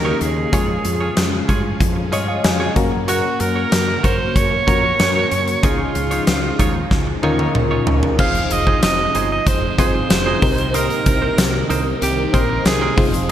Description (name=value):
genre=1980s-style pop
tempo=94 BPM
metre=4/4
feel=straight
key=F minor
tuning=A4 = 441 Hz
part: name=bright alto saxophone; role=melody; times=0.0-13.1 s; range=F4 to F5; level=-21 LUFS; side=right 3 dB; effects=digital delay
part: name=FM electric piano with tremolo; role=accompaniment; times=0.0-13.3 s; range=Ab3 to Bb5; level=-23 LUFS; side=left 4 dB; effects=none
part: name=phased string machine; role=sustained chords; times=0.0-13.3 s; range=C3 to Ab4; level=-28 LUFS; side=equal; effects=ensemble chorus, phaser
part: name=clean electric guitar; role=riff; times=0.0-13.3 s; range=Eb4 to Db5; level=-26 LUFS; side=right 4 dB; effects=wide subtle chorus, digital delay
part: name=woody fretless electric bass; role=bass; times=0.0-13.3 s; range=F1 to G2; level=-24 LUFS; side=equal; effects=lush chorus
part: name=huge arena drum kit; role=drums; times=0.2-13.3 s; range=crash cymbal, hi-hat, kick drum, snare drum, tambourine, toms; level=-19 LUFS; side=equal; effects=gated reverb
part: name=biting overdriven guitar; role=accompaniment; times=8.2-13.3 s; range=C3 to F4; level=-31 LUFS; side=right 2 dB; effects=none
room=moderate lush hall reverb, RT60 2.6 s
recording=bright 1980s-style digital production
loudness=-15 LUFS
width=side -11 dB against mid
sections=0.0-8.2 A section; 8.2-13.3 B section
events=FM electric piano fill 1.8-3.1; drum fill 6.9-8.2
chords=0.0 Eb7; 0.5 Db/F; 2.8 Gb; 5.6 Dbadd9; 8.2 Fm7; 10.4 Cm7